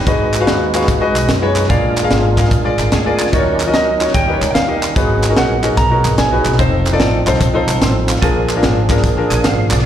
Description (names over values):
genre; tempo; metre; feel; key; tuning
uptempo gospel; 147 BPM; 4/4; swing 66% on 8ths; unclear; A4 = 442 Hz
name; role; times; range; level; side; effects
percussive tonewheel organ; sustained chords; 0.0-9.8 s; F3 to Ab5; -20 LUFS; right 3 dB; slow rotary speaker, chorus vibrato
crisp fusion drum kit; drums; 0.0-9.8 s; hi-hat, kick drum, snare drum; -18 LUFS; equal; none
clear concert grand piano; accompaniment; 0.1-9.9 s; Ab2 to C6; -17 LUFS; left 3 dB; slapback echo
upright bass; bass; 0.1-9.8 s; F1 to Gb2; -18 LUFS; equal; none
group handclap; percussion; 0.3-9.8 s; none; -24 LUFS; right 3 dB; none
clean lap steel guitar; melody; 3.7-6.6 s; Eb5 to Bb5; -18 LUFS; right 2 dB; slapback echo
room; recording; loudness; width
light reverb; live gig heard through the venue's PA, recital hall reverb; -12 LUFS; side -10 dB against mid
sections
0.0-9.9 A section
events
tonewheel organ fill 2.5-3.3, 9.0-9.9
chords
0.1 Abm7; 1.7 Bb7; 3.3 Ebm7; 4.1 Eb7; 5.0 Abm7; 6.6 F7; 8.2 Bb7